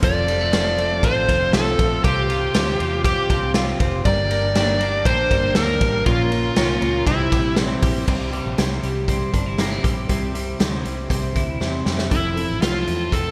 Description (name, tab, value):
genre	jangly indie pop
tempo	119 BPM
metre	4/4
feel	straight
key	unclear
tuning	A4 = 440 Hz
part	dark smooth lead guitar	melody	0.0-7.5, 12.1-13.3 s	E4 to D5	-24 LUFS	equal	overdrive
part	fingerpicked twelve-string acoustic guitar	accompaniment	0.0-13.3 s	G2 to Bb4	-31 LUFS	equal	none
part	overdriven combo organ	accompaniment	0.0-8.1 s	C4 to Bb4	-34 LUFS	equal	none
part	twelve-string electric guitar	arpeggios	0.0-13.3 s	F2 to G4	-29 LUFS	equal	lush chorus
part	vintage muted fingered electric bass	bass	0.0-13.3 s	F1 to F2	-29 LUFS	equal	none
part	raw garage drum kit	drums	0.0-13.2 s	crash cymbal, hi-hat, kick drum, ride cymbal, snare drum	-25 LUFS	equal	gated reverb
room	moderate plate reverb, RT60 1.9 s, small room ambience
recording	bright 1980s-style digital production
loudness	-20 LUFS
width	mono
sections	0.0-8.1 A section; 8.1-12.1 B section; 12.1-13.3 C section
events	drum fill 11.6-12.1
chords	0.0 F; 2.0 Csus4; 4.1 Gm; 6.1 Bbm; 7.1 C; 12.1 Fmaj7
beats	| 0.03 0.53 1.04 1.54 | 2.04 2.54 3.05 3.55 | 4.05 4.55 5.06 5.56 | 6.06 6.57 7.07 7.57 | 8.08 8.58 9.09 9.59 | 10.09 10.60 11.11 11.61 | 12.12 12.62 13.13